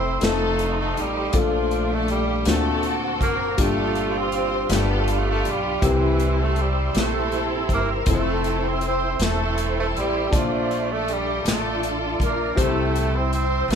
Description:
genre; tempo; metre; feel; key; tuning
slow gospel; 53 BPM (dotted quarters); 6/8; straight; F major; A4 = 440 Hz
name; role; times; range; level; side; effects
clear tenor saxophone; melody; 0.0-13.8 s; E3 to C4; -27 LUFS; right 4 dB; none
warm studio string section; melody; 0.0-13.7 s; G3 to C5; -26 LUFS; left 1 dB; none
warm upright piano; accompaniment; 0.0-13.8 s; G2 to A5; -27 LUFS; left 4 dB; none
percussive tonewheel organ; sustained chords; 0.0-13.8 s; A3 to E6; -31 LUFS; right 4 dB; slow rotary speaker, chorus vibrato
upright bass; bass; 0.0-13.8 s; E1 to D2; -26 LUFS; equal; none
natural country drum kit; drums; 0.2-13.8 s; hi-hat, kick drum, snare drum; -25 LUFS; equal; none
room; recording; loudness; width
moderate large studio reverb, RT60 0.8 s; band playing live in one room; -20 LUFS; side -7 dB against mid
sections
0.0-13.8 A section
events
none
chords
0.2 F7; 1.3 Bbmaj7; 2.5 D7b13; 3.6 Gm7; 4.7 G7; 5.8 C; 8.1 Fmaj7; 10.3 Bbmaj7; 12.6 C

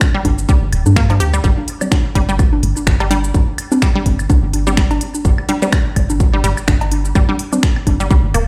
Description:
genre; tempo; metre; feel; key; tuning
minimal techno; 126 BPM; 4/4; swing 56% on 16ths; unclear; A4 = 440 Hz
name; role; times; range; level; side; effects
electronic kick drum; drums; 0.0-8.2 s; none; -17 LUFS; equal; studio ambience
minimal click drum kit; drums; 0.0-8.5 s; cabasa, finger snaps, hi-hat; -26 LUFS; equal; studio ambience
resonant blip pluck; riff; 0.1-8.4 s; F3 to G4; -25 LUFS; equal; chorus, sidechain pumping, dub echo
woodblock, congas and cowbell; percussion; 0.1-8.5 s; none; -26 LUFS; equal; studio ambience, delay
woody FM bass; bass; 0.2-8.5 s; D1 to G2; -19 LUFS; equal; sidechain pumping
filtered dub chord stab; stabs; 1.8-7.6 s; G3 to D4; -25 LUFS; equal; phaser, delay
room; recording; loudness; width
little or no reverb; played on a big sound system in a bare room, stone room reverb; -15 LUFS; mono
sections
0.0-8.5 A section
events
none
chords
none

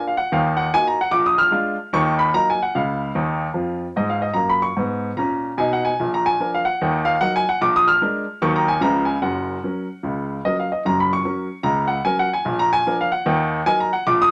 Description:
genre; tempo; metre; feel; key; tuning
jazz, stride piano; 149 BPM; 4/4; swing 61% on 8ths; F# major; A4 = 441 Hz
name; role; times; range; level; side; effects
warm baby grand piano; solo; 0.0-14.3 s; F#1 to E#6; -20 LUFS; equal; none
room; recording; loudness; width
moderate studio reverb, RT60 0.5 s; none; -20 LUFS; mono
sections
0.0-10.8 A section; 10.8-14.3 A section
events
grand piano fill 3.2-4.4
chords
0.3 D#m; 1.1 A#7; 2.0 D#m; 2.8 C#; 4.4 F#; 6.0 A#; 6.8 D#m; 7.6 A#7; 8.4 D#m; 8.8 C#7; 9.2 F#; 12.4 A#; 13.3 D#m

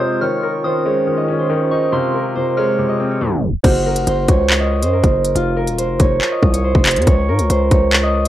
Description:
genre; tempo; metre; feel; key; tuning
hip hop, drill; 140 BPM; 4/4; half-time; F phrygian; A4 = 440 Hz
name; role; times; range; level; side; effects
concert harp; melody; 0.0-8.3 s; F4 to Eb5; -18 LUFS; right 2 dB; low-pass filter, cassette tape
soft synth bell; second line; 0.0-3.6 s; C6 to F6; -28 LUFS; right 1 dB; chorus, phaser, analog delay
clear baby grand piano; accompaniment; 0.0-3.7 s; C3 to C5; -20 LUFS; left 3 dB; low-pass filter
hollow soft pad; sustained chords; 0.0-3.6 s; C3 to F4; -24 LUFS; equal; chorus, low-pass filter
distorted 808-style bass; bass; 3.6-8.3 s; Eb1 to Ab2; -17 LUFS; equal; distortion
drill drum kit; drums; 3.6-8.3 s; crash cymbal, handclaps, hi-hat, kick drum; -16 LUFS; equal; cassette tape
room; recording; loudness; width
light reverb, digital ambience; home recording on cassette, tape stop; -14 LUFS; side -13 dB against mid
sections
0.0-3.6 A section; 3.6-8.3 B section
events
tape stop 3.2-3.6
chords
0.2 Dbadd9; 1.9 Fm; 3.6 Gb; 5.4 F5; 7.1 Db5

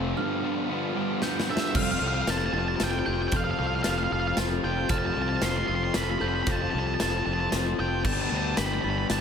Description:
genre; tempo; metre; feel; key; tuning
post-rock; 114 BPM; 3/4; straight; unclear; A4 = 440 Hz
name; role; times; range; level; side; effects
phased analog pad; sustained chords; 0.1-9.2 s; G4 to C6; -40 LUFS; right 5 dB; phaser, chorus
clean electric guitar; arpeggios; 0.0-1.8 s; G2 to G4; -38 LUFS; right 2 dB; phaser, slapback echo, digital delay
overdriven electric guitar; riff; 0.0-9.2 s; G2 to A4; -30 LUFS; left 10 dB; slapback echo
thick fuzz guitar; riff; 0.0-1.7 s; F2 to G3; -31 LUFS; right 13 dB; distortion
fuzz fingered electric bass; bass; 0.0-9.2 s; F1 to D2; -31 LUFS; right 1 dB; overdrive
glockenspiel with soft plastic mallets; arpeggios; 0.2-9.2 s; F6 to A6; -37 LUFS; right 4 dB; slapback echo, digital delay
big rock drum kit; drums; 1.2-9.2 s; crash cymbal, hi-hat, kick drum, snare drum; -31 LUFS; equal; none
octave-fuzz lead guitar; melody; 1.5-9.2 s; E5 to C6; -30 LUFS; right 4 dB; distortion, slapback echo, digital delay
room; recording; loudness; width
moderate lush hall reverb, RT60 1.6 s; big arena sound; -24 LUFS; side -7 dB against mid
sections
0.0-1.8 A section; 1.8-9.2 B section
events
build-up 0.0-1.8; drum fill 1.2-1.8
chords
0.2 G7; 1.8 Fadd9; 8.1 Gadd9

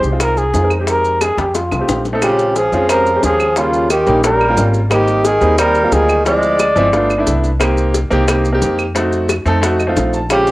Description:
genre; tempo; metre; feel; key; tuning
Afro-Cuban jazz; 178 BPM; 4/4; straight; F minor; A4 = 440 Hz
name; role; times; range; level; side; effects
breathy trumpet; melody; 0.0-7.4, 10.3-10.5 s; F4 to D5; -15 LUFS; equal; cassette tape
clear upright piano; accompaniment; 0.0-10.5 s; F3 to A5; -17 LUFS; equal; cassette tape
upright bass; bass; 0.0-10.5 s; G1 to F2; -19 LUFS; equal; none
maracas; percussion; 0.0-10.5 s; none; -29 LUFS; right 3 dB; none
bongos; percussion; 0.2-10.5 s; none; -22 LUFS; left 4 dB; none
claves; percussion; 0.2-10.5 s; none; -26 LUFS; right 4 dB; none
clear tenor saxophone; second line; 2.2-6.9, 10.3-10.5 s; Db3 to Ab3; -19 LUFS; right 1 dB; cassette tape, tape echo
room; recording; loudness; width
moderate spring reverb, RT60 1.2 s, small room ambience; home recording on cassette; -12 LUFS; side -18 dB against mid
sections
0.0-2.2 A section; 2.2-10.5 B section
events
drum fill 1.2-2.2; upright piano fill 9.6-10.3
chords
0.0 Fm9; 1.6 F7; 2.2 Bbm9; 3.6 Eb9; 4.9 Abmaj7; 6.3 Dm7b5; 6.9 G7; 7.6 Cm7; 9.0 F7b9

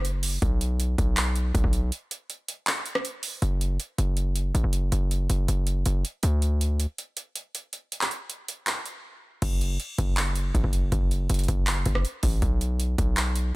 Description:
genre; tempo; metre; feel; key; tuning
hip hop, trap; 160 BPM; 4/4; half-time; F# minor; A4 = 440 Hz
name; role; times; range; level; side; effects
hard-hitting 808-style bass; bass; 0.0-6.9, 9.4-13.5 s; F#1 to D2; -24 LUFS; equal; none
booming analog drum machine; drums; 0.0-13.4 s; crash cymbal, handclaps, hi-hat, kick drum, rim click; -27 LUFS; equal; overdrive
room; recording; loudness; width
little or no reverb; dense, heavily limited modern master; -24 LUFS; side -21 dB against mid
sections
0.0-3.4 A section; 3.4-9.4 B section; 9.4-13.6 C section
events
break 1.9-3.4, 9.0-9.4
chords
none

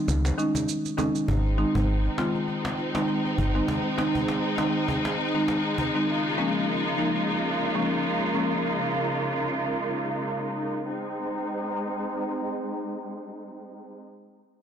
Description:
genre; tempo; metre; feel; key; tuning
dancehall; 100 BPM; 4/4; swing 56% on 16ths; Ab major; A4 = 436 Hz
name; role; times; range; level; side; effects
solid FM bass; bass; 0.1-3.6 s; G1 to Db2; -24 LUFS; equal; none
cajon; drums; 0.1-5.9 s; none; -34 LUFS; left 1 dB; none
maracas and timbales; percussion; 0.1-1.3 s; none; -34 LUFS; right 11 dB; none
marimba with medium mallets; accompaniment; 0.4-8.5 s; Eb3 to F4; -27 LUFS; left 1 dB; low-pass filter
warm symphonic string section; sustained chords; 1.3-14.0 s; Db3 to F4; -28 LUFS; equal; low-pass filter
room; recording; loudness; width
light reverb, small room ambience; blown-out, overdriven recording, overdrive; -24 LUFS; side -8 dB against mid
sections
0.0-1.3 A section; 1.3-10.9 B section; 10.9-13.3 C section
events
none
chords
0.1 Dbsus2; 1.3 Ab; 6.1 Db6; 10.9 Ab

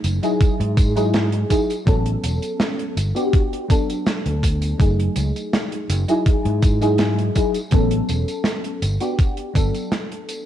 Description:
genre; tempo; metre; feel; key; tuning
vaporwave; 82 BPM; 4/4; straight; unclear; A4 = 442 Hz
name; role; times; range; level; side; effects
mellow FM electric piano; accompaniment; 0.0-10.5 s; F#3 to A4; -22 LUFS; left 1 dB; phaser, ensemble chorus, tape echo
fingered electric bass; bass; 0.0-9.7 s; E1 to G#2; -21 LUFS; equal; none
modern studio drum kit; drums; 0.0-10.4 s; hi-hat, snare drum, tambourine; -26 LUFS; right 1 dB; gated reverb
electronic kick drum; drums; 0.4-9.7 s; none; -18 LUFS; equal; overdrive
room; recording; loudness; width
small room reverb; none; -17 LUFS; side -11 dB against mid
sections
0.0-10.5 A section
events
fade-out 8.7-10.5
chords
0.4 Emaj9/G#; 1.9 A69; 3.0 Gmaj7; 4.8 F#m69; 6.3 Emaj9/G#; 7.7 A69; 8.8 Gmaj7

